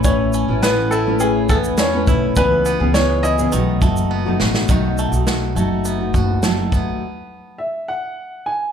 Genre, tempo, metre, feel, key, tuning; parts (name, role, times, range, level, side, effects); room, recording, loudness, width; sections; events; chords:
acoustic pop; 103 BPM; 4/4; straight; A4 = 440 Hz
clear upright piano; melody; 0.0-8.7 s; G#4 to G#5; -21 LUFS; left 1 dB; slapback echo
fingerpicked steel-string acoustic guitar; accompaniment; 0.0-7.0 s; B2 to B4; -20 LUFS; left 2 dB; double-tracked left and right, slapback echo
bluegrass banjo; arpeggios; 0.0-7.6 s; D#3 to F#4; -27 LUFS; right 8 dB; slapback echo
upright bass; bass; 0.0-7.0 s; F#1 to E2; -21 LUFS; equal
natural country drum kit; drums; 0.0-6.9 s; kick drum, shaker, snare drum; -20 LUFS; equal
light reverb, small room ambience; live gig heard through the venue's PA, club reverb; -15 LUFS; side -8 dB against mid
0.0-4.7 A section; 4.7-7.0 B section; 7.0-8.7 C section
drum fill 4.1-4.7
0.0 Aadd9; 2.4 C#m7; 3.5 B7; 7.0 N.C.